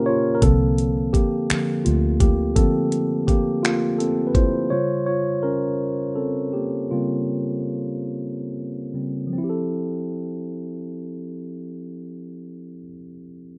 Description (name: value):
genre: slow six-eight R&B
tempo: 45-56 BPM (dotted quarters)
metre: 6/8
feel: straight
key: F major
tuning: A4 = 440 Hz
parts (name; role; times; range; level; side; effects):
- mellow tine electric piano; accompaniment; 0.0-13.6 s; Bb2 to Db5; -25 LUFS; equal; none
- vintage muted fingered electric bass; bass; 0.4-2.5 s; C2 to D2; -23 LUFS; equal; none
- smooth R&B drum kit; drums; 0.4-4.5 s; finger snaps, hi-hat, kick drum; -22 LUFS; equal; none
room: little or no reverb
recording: rough home demo mix, low-pass filter, nothing above 11.0 kHz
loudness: -22 LUFS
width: mono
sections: 0.4-9.4 A section; 9.4-13.6 B section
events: break 0.0-0.4; tine electric piano solo 0.4-9.4; filter sweep 0.4-9.4; slowing down 4.7-9.4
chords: 0.4 C7sus4; 4.7 Bbm6; 9.4 Fmaj9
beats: | 0.42 1.49 | 2.56 3.63 | 4.71 5.79 | 6.91 8.10 | 9.38 10.72 | 12.06 13.39